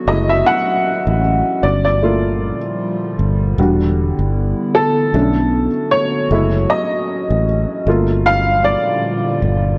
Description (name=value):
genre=lo-fi hip hop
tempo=77 BPM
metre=4/4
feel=swing 56% on 16ths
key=unclear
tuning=A4 = 439 Hz
part: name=dark upright piano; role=accompaniment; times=0.0-9.8 s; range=G3 to F#5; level=-19 LUFS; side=equal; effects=cassette tape, low-pass filter
part: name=warbly tape-like pad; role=sustained chords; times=0.0-9.8 s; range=Bb2 to F#4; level=-25 LUFS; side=equal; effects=chorus, built-in reverb, phaser, low-pass filter
part: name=fingered electric bass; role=bass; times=0.1-9.8 s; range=E1 to B1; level=-19 LUFS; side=equal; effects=transformer saturation
room=light reverb, small room ambience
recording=dry, gritty hardware recording, transformer saturation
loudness=-16 LUFS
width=mono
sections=0.0-9.8 A section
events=upright piano solo 0.0-9.8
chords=0.1 F#m7; 1.6 Gm7; 3.6 Em7; 5.1 Bm7; 6.3 F#m7; 7.9 Gm7